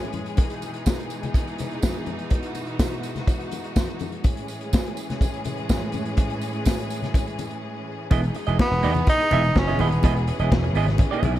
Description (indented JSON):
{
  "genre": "disco",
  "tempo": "124 BPM",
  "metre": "4/4",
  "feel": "straight",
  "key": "E major",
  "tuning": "A4 = 440 Hz",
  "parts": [
    { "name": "clear studio string section", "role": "sustained chords", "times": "0.0-11.4 s", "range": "A2 to G#4", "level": "-30 LUFS", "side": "equal", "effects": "none" },
    { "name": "vintage drum kit", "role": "drums", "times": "0.0-11.4 s", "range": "hi-hat, kick drum, snare drum", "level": "-22 LUFS", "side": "equal", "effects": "none" },
    { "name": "congas", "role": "percussion", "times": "0.1-11.3 s", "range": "none", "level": "-33 LUFS", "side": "left 5 dB", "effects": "none" },
    { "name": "tambourine", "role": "percussion", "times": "0.6-7.5 s", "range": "none", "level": "-42 LUFS", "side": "right 11 dB", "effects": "none" },
    { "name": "semi-hollow electric guitar", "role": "accompaniment", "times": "8.1-11.4 s", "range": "B3 to E5", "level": "-27 LUFS", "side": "right 7 dB", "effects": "none" },
    { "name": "vintage slap bass", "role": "bass", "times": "8.1-11.4 s", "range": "D#1 to E2", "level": "-22 LUFS", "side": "equal", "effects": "none" },
    { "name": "warm tenor saxophone", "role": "melody", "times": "8.6-10.3 s", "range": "B3 to D#4", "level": "-23 LUFS", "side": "right 1 dB", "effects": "none" }
  ],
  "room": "studio ambience",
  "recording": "dark, warm production",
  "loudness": "-21 LUFS",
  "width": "side -13 dB against mid",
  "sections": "0.0-8.1 A section; 8.1-11.4 B section",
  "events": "break 7.6-8.1",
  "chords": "0.4 Emaj7; 4.3 Amaj7; 8.1 Emaj7"
}